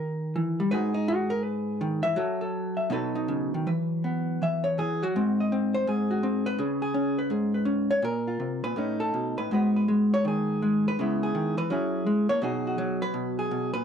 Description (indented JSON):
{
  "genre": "solo jazz",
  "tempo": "165 BPM",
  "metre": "4/4",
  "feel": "swing 66% on 8ths, rubato",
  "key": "G# minor",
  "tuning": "A4 = 444 Hz",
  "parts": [
    { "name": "vintage hollow-body jazz guitar", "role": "solo", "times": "0.0-13.8 s", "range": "G#2 to E5", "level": "-24 LUFS", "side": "equal", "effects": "none" }
  ],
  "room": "moderate studio ambience, RT60 0.5 s",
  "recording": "dark, warm production",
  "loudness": "-24 LUFS",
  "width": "side -7 dB against mid",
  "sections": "0.0-3.7 A section; 3.7-13.8 A section",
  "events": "hollow-body jazz guitar solo 0.0-3.7, 3.7-13.8",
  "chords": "0.0 D#; 0.7 G#m7; 2.2 F#m7; 2.9 B7; 3.7 Esus2; 5.1 G#7; 6.6 C#5; 8.0 A#5; 8.8 A; 9.5 G#m7; 11.0 C#m7; 11.7 F#9; 12.4 B6",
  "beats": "0.35 | 0.71 1.07 1.43 1.80 | 2.16 2.53 2.90 3.29 | 3.67 4.05 4.42 4.79 | 5.15 5.51 5.86 6.22 | 6.58 6.94 7.29 7.66 | 8.02 8.39 8.76 9.13 | 9.51 9.88 10.25 10.62 | 10.98 11.35 11.71 12.06 | 12.42 12.77 13.13 13.50"
}